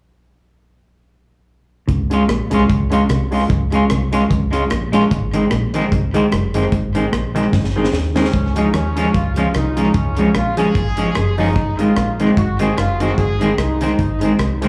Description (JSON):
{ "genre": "ska", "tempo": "149 BPM", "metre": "4/4", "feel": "swing 56% on 8ths", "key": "Db major", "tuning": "A4 = 439 Hz", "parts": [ { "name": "semi-hollow electric guitar", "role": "riff", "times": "1.9-8.1 s", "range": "Gb2 to Eb3", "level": "-25 LUFS", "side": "equal", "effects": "spring reverb, slapback echo" }, { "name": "deep dub fingered electric bass", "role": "bass", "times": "1.9-14.7 s", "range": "Gb1 to Eb2", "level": "-23 LUFS", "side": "equal", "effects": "none" }, { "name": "deep reggae drum kit", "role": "drums", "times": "1.9-14.7 s", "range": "hi-hat, kick drum, rim click, snare drum", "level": "-25 LUFS", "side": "equal", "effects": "tape echo, slapback echo" }, { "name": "semi-hollow electric guitar", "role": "accompaniment", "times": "2.1-14.7 s", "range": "Eb3 to F4", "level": "-22 LUFS", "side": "equal", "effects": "tremolo, slapback echo" }, { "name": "warm upright piano", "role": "stabs", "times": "2.1-14.7 s", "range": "Ab3 to Ab4", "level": "-23 LUFS", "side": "equal", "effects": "slapback echo" }, { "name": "clear horn section", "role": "melody", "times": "8.2-14.7 s", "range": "Db4 to Ab4", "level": "-25 LUFS", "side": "equal", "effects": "tape echo, slapback echo" } ], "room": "light reverb, small room ambience", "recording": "live gig heard through the venue's PA, club reverb, faint mains hum", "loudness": "-17 LUFS", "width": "mono", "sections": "1.9-8.3 A section; 8.3-14.7 B section", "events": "drum fill 7.5-8.3", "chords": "1.9 Db; 5.1 Ab; 8.3 Db; 11.6 Ab", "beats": "| 1.89 2.29 2.70 3.10 | 3.50 3.90 4.31 4.71 | 5.11 5.52 5.92 6.32 | 6.72 7.13 7.53 7.93 | 8.34 8.74 9.14 9.55 | 9.95 10.35 10.76 11.16 | 11.56 11.97 12.37 12.77 | 13.18 13.58 13.98 14.39" }